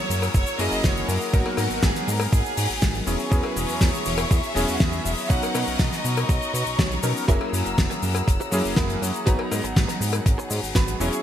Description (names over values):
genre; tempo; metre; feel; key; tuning
nu-disco, nu disco; 121 BPM; 4/4; straight; unclear; A4 = 443 Hz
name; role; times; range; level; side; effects
clear chamber violin section; melody; 0.0-7.1 s; F#4 to F#5; -30 LUFS; right 2 dB; digital delay
clear electric grand piano; accompaniment; 0.0-11.2 s; F#3 to A#5; -28 LUFS; equal; analog chorus
warm studio string section; sustained chords; 0.0-11.2 s; G#4 to E6; -33 LUFS; left 2 dB; sidechain pumping
fat analog bass; bass; 0.1-11.1 s; E1 to B2; -27 LUFS; equal; none
damped 70s drum kit; drums; 0.1-11.2 s; hi-hat, shaker, snare drum; -27 LUFS; left 2 dB; studio reverb, gated reverb
cowbell; percussion; 0.2-10.2 s; none; -32 LUFS; left 7 dB; none
electronic kick drum; drums; 0.3-10.9 s; none; -21 LUFS; equal; studio reverb
direct-recorded clean electric guitar; riff; 7.3-11.2 s; E4 to C#5; -31 LUFS; right 2 dB; ensemble chorus, digital delay
room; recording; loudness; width
light reverb; bright 1980s-style digital production; -20 LUFS; side -10 dB against mid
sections
0.0-11.2 A section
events
none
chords
0.0 F#7; 1.3 G#m7; 3.1 E6; 5.3 Bmaj9; 7.3 F#7; 9.3 G#m7